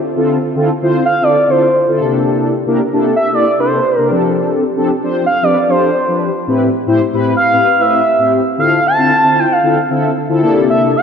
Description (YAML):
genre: funk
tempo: 114 BPM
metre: 4/4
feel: straight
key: D minor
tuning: A4 = 440 Hz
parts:
  - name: mellow synth brass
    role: accompaniment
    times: 0.2-11.0 s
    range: A2 to C5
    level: -14 LUFS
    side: left 2 dB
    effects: chorus
  - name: expressive portamento lead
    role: melody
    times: 1.1-11.0 s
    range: C5 to A5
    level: -13 LUFS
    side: right 1 dB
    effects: chorus, tape echo
room: wet lush hall reverb, RT60 2.5 s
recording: dreamy mix soaked in reverb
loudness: -11 LUFS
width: side -7 dB against mid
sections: 0.2-11.0 A section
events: none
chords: 0.2 Dm9; 2.0 C13; 4.1 F69; 6.5 Am7; 8.6 Dm9; 10.4 C13